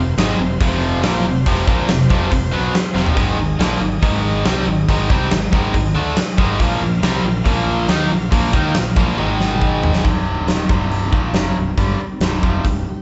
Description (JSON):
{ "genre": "classic rock", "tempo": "140 BPM", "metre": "4/4", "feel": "straight", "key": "C minor", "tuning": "A4 = 435 Hz", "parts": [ { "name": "bright tonewheel organ", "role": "sustained chords", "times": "0.0-10.0 s", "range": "C4 to F5", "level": "-33 LUFS", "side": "equal", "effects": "none" }, { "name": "biting overdriven guitar", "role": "riff", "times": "0.0-12.8 s", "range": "C2 to Eb4", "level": "-25 LUFS", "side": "equal", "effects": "none" }, { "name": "tight distorted guitar", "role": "riff", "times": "0.0-10.0 s", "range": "F2 to Eb4", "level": "-23 LUFS", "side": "equal", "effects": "distortion" }, { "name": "fuzz fingered electric bass", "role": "bass", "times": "0.0-12.8 s", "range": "C1 to Eb2", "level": "-25 LUFS", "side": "equal", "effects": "overdrive" }, { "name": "big rock drum kit", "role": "drums", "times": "0.2-12.8 s", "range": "hi-hat, kick drum, snare drum, toms", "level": "-21 LUFS", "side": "equal", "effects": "none" }, { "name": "picked steel-string acoustic guitar", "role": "accompaniment", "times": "10.0-13.0 s", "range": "C3 to G4", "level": "-29 LUFS", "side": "equal", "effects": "none" } ], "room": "moderate large studio reverb, RT60 1.2 s", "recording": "band playing live in one room, nothing above 7.9 kHz", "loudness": "-17 LUFS", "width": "mono", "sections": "0.0-10.0 A section; 10.0-13.0 B section", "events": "drum fill 3.0, 9.2-10.0", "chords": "0.0 F5; 3.2 Ab5; 6.6 Bb5; 9.2 Ab5; 10.0 Cm", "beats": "0.17 0.60 1.03 | 1.46 1.89 2.31 2.74 | 3.17 3.60 4.03 4.46 | 4.88 5.31 5.74 6.17 | 6.60 7.03 7.46 7.89 | 8.32 8.75 9.18 9.62 | 10.05 10.48 10.91 11.35 | 11.78 12.22 12.65" }